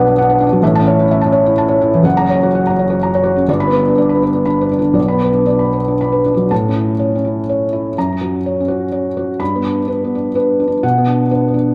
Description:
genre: neoclassical minimalist piano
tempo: 125 BPM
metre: 3/4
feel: rubato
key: B minor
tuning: A4 = 440 Hz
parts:
  - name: felt-muted upright piano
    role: solo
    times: 0.0-11.7 s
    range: F#1 to B5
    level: -15 LUFS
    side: equal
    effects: none
room: wet spring reverb, RT60 1.9 s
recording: heard from further back in the room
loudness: -15 LUFS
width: mono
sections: 0.0-6.5 A section; 6.5-11.7 B section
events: none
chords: 0.0 Bm; 0.6 A; 2.0 F#; 3.5 G; 5.0 Bm; 6.5 A; 8.0 F#; 9.4 G; 10.8 Bm

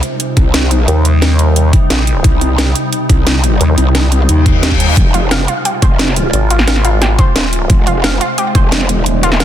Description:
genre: dark technical drum and bass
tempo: 176 BPM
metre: 4/4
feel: straight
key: F minor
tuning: A4 = 440 Hz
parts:
  - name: swarming drone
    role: sustained chords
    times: 0.0-9.4 s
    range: C3 to F4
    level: -18 LUFS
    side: left 1 dB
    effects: built-in reverb, sidechain pumping
  - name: drum and bass drum kit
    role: drums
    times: 0.0-9.4 s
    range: hi-hat, snare drum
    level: -17 LUFS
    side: right 1 dB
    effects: overdrive
  - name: growl bass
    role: bass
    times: 0.4-9.4 s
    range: Eb1 to Eb2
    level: -13 LUFS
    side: equal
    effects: chorus
  - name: electronic kick drum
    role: drums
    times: 0.4-8.6 s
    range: none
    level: -10 LUFS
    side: equal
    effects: overdrive
  - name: vowel-sweep wobble bass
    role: bass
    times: 0.9-3.8, 6.3-7.7 s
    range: Eb1 to Eb2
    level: -11 LUFS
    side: equal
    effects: chorus
  - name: reverse cymbal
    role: sound effects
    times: 4.4-5.0 s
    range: none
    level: -20 LUFS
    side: left 5 dB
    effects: none
  - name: analog pluck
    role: arpeggios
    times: 5.1-9.4 s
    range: F4 to F5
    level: -19 LUFS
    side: right 1 dB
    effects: chorus, sidechain pumping, digital delay
room: light reverb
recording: dense, heavily limited modern master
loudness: -9 LUFS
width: side -11 dB against mid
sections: 0.0-9.4 A section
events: reverse cymbal 4.4-5.0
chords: 0.0 Cm; 5.0 Fm

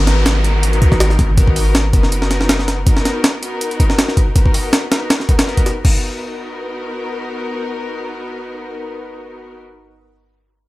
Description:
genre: drum and bass, jungle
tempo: 161 BPM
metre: 4/4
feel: swing 53% on 16ths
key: unclear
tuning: A4 = 440 Hz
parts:
  - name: warm studio string section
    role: sustained chords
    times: 0.0-9.6 s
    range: B3 to A#4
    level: -23 LUFS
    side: left 2 dB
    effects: vintage 12-bit sampler grit
  - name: warm 808-style bass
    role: bass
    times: 0.0-2.9 s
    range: F#1 to A#1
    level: -16 LUFS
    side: equal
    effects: none
  - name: downlifter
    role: sound effects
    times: 0.0-2.9 s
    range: none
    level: -26 LUFS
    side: equal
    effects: none
  - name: jungle sampler-style drum kit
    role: drums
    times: 0.1-5.9 s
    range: crash cymbal, hi-hat, kick drum, snare drum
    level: -14 LUFS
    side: equal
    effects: studio reverb
room: little or no reverb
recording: faint mains hum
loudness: -13 LUFS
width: side -18 dB against mid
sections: 0.0-5.8 A section; 5.8-8.8 B section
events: none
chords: 0.0 G#m7; 5.8 Bmaj7

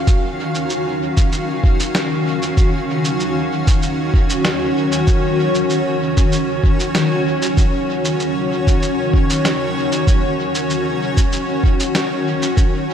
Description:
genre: ambient dub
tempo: 96 BPM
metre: 4/4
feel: straight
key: Eb minor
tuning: A4 = 439 Hz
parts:
  - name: granular cloud pad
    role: sustained chords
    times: 0.0-12.9 s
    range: Eb3 to F5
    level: -18 LUFS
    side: left 1 dB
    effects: built-in reverb
  - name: electronic kick drum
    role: drums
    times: 0.1-12.7 s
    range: none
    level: -15 LUFS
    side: equal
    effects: none
  - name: electronic shaker and snare drum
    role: drums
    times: 0.1-12.7 s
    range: none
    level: -24 LUFS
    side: right 1 dB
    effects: dub echo
room: moderate lush hall reverb, RT60 2.7 s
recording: dreamy mix soaked in reverb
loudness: -15 LUFS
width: side -8 dB against mid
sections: 0.0-12.9 A section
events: none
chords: 0.0 Ebm9

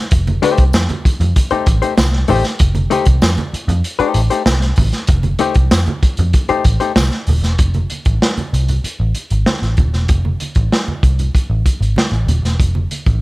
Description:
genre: funk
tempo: 96 BPM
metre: 4/4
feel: straight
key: F mixolydian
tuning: A4 = 440 Hz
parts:
  - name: vintage muted picked electric bass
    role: bass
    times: 0.1-13.2 s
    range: Eb1 to F2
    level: -15 LUFS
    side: equal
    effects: none
  - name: crunchy breakbeat drum kit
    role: drums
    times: 0.1-13.2 s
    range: hi-hat, kick drum, snare drum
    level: -16 LUFS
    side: equal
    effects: none
  - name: congas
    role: percussion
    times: 0.1-13.1 s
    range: none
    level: -24 LUFS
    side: right 3 dB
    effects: none
  - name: hollow-body jazz guitar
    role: accompaniment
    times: 0.4-6.9 s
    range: A3 to C5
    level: -16 LUFS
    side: left 6 dB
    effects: none
  - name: tambourine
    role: percussion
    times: 0.7-7.1 s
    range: none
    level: -33 LUFS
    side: left 5 dB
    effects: none
room: studio ambience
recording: none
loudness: -13 LUFS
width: side -19 dB against mid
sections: 0.0-7.6 A section; 7.6-13.2 B section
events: none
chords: 0.0 F9; 7.6 F

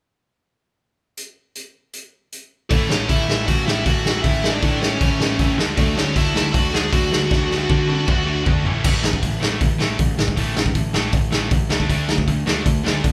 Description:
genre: punk rock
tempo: 157 BPM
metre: 4/4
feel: straight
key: unclear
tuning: A4 = 440 Hz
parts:
  - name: raw garage drum kit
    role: drums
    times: 1.2-13.1 s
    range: crash cymbal, hi-hat, kick drum, snare drum, toms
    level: -22 LUFS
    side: equal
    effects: none
  - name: high-gain lead guitar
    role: melody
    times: 2.7-8.5 s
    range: A3 to G#5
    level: -25 LUFS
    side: equal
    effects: distortion
  - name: cranked stack guitar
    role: riff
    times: 2.7-13.1 s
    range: A2 to D4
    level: -30 LUFS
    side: equal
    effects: overdrive
  - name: distorted electric guitar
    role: riff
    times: 2.7-13.1 s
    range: A2 to F#4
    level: -30 LUFS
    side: equal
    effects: overdrive
  - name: fuzz picked electric bass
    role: bass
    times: 2.7-13.1 s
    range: A1 to D3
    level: -27 LUFS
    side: equal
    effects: overdrive
room: light reverb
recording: band playing live in one room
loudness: -19 LUFS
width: mono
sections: 1.2-2.7 A section; 2.7-8.8 B section; 8.8-13.1 C section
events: drum fill 7.3-8.8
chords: 1.2 N.C.; 2.7 A; 5.6 D; 8.6 A; 8.8 A5; 11.7 D5

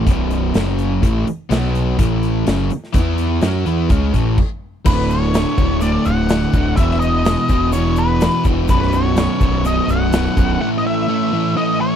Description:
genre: classic rock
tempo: 125 BPM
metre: 4/4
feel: straight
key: unclear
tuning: A4 = 442 Hz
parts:
  - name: cranked stack guitar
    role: riff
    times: 0.0-12.0 s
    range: B1 to F#4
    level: -21 LUFS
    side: left 14 dB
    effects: overdrive
  - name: sludgy distorted guitar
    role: riff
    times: 0.0-12.0 s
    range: B1 to F#4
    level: -21 LUFS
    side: right 14 dB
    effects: overdrive
  - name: fuzz picked electric bass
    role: bass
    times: 0.0-10.6 s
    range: B0 to F#2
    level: -19 LUFS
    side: equal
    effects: overdrive
  - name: big rock drum kit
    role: drums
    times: 0.1-10.5 s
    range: crash cymbal, hi-hat, kick drum, snare drum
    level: -18 LUFS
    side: equal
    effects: none
  - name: octave-fuzz lead guitar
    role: melody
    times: 4.9-12.0 s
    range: B4 to F#5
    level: -22 LUFS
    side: left 1 dB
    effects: distortion
  - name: egg shaker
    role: percussion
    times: 4.9-10.5 s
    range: none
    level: -41 LUFS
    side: right 15 dB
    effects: none
room: little or no reverb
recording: dry, close 1970s-style studio recording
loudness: -14 LUFS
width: side -9 dB against mid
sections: 0.0-4.9 A section; 4.9-12.0 B section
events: stop 4.4-4.9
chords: 0.1 B5; 0.5 F#5; 1.0 A5; 1.5 B5; 2.0 A; 2.9 E5; 3.4 Aadd9; 4.9 D; 6.8 E5; 8.7 B5; 10.6 A5

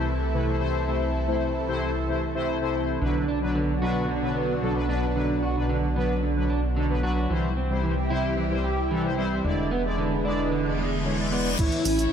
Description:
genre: synthwave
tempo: 112 BPM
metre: 4/4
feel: straight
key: E minor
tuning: A4 = 437 Hz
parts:
  - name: lush unison pad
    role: sustained chords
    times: 0.0-12.1 s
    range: A2 to A4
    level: -29 LUFS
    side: equal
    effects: chorus, phaser, sidechain pumping
  - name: analog synth brass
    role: stabs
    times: 0.0-12.1 s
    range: A2 to D5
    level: -28 LUFS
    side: left 2 dB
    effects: chorus, ping-pong delay
  - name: chorused synth bass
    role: bass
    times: 0.0-12.1 s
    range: E1 to C2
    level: -29 LUFS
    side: equal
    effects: tube saturation, sidechain pumping
  - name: electric guitar at the edge of break-up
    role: arpeggios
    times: 3.0-12.0 s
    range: D3 to G4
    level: -29 LUFS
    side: right 2 dB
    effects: ping-pong delay
  - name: reverse cymbal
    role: sound effects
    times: 10.7-11.6 s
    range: none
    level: -33 LUFS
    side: left 3 dB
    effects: none
  - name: warm velvety synth lead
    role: melody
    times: 11.6-12.1 s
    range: E4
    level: -25 LUFS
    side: equal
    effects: chorus
  - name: string machine, violins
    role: second line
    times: 11.6-12.1 s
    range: E4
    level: -32 LUFS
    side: left 2 dB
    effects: ensemble chorus
  - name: electronic kick drum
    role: drums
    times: 11.6-11.7 s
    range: none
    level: -25 LUFS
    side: equal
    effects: none
  - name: gated 80s digital drum machine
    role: drums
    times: 11.6-12.1 s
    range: crash cymbal, hi-hat, shaker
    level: -31 LUFS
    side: equal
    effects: low-pass filter on hats, low-pass filter on cymbals, low-pass filter on perc, low-pass filter on snare, low-pass filter on room
room: moderate lush hall reverb, RT60 2.1 s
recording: none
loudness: -23 LUFS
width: side -8 dB against mid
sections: 0.0-11.6 A section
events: reverse cymbal 10.7-11.6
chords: 0.0 Am/C; 3.0 Bm; 7.3 C; 9.4 E7; 11.6 A

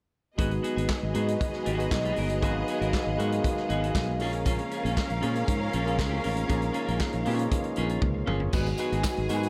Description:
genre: disco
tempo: 118 BPM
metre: 4/4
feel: straight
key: G# dorian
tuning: A4 = 441 Hz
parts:
  - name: rich symphonic string section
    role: second line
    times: 0.4-9.5 s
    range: B3 to G#5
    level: -36 LUFS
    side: equal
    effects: tape echo
  - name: barky tine electric piano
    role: accompaniment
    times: 0.4-9.5 s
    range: G#3 to C#5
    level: -36 LUFS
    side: equal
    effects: overdrive
  - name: clean electric guitar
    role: accompaniment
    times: 0.4-9.5 s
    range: B3 to A#4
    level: -38 LUFS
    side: equal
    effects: warbly pitch drift
  - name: mellow French horn section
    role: sustained chords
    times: 0.4-9.5 s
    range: C#3 to E#5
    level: -38 LUFS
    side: equal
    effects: none
  - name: fingered electric bass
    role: bass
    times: 0.4-9.5 s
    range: G1 to A#2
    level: -32 LUFS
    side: equal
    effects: none
  - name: vintage drum kit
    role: drums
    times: 0.4-9.5 s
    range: crash cymbal, handclaps, hi-hat, kick drum, snare drum, toms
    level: -33 LUFS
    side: equal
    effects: none
  - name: tambourine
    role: percussion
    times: 8.5-9.4 s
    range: none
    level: -48 LUFS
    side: equal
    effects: none
room: light reverb, small room ambience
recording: none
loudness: -28 LUFS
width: mono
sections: 0.4-8.5 A section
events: drum fill 8.0-8.5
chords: 0.4 G#m7; 4.2 A#m7; 8.5 G#m7

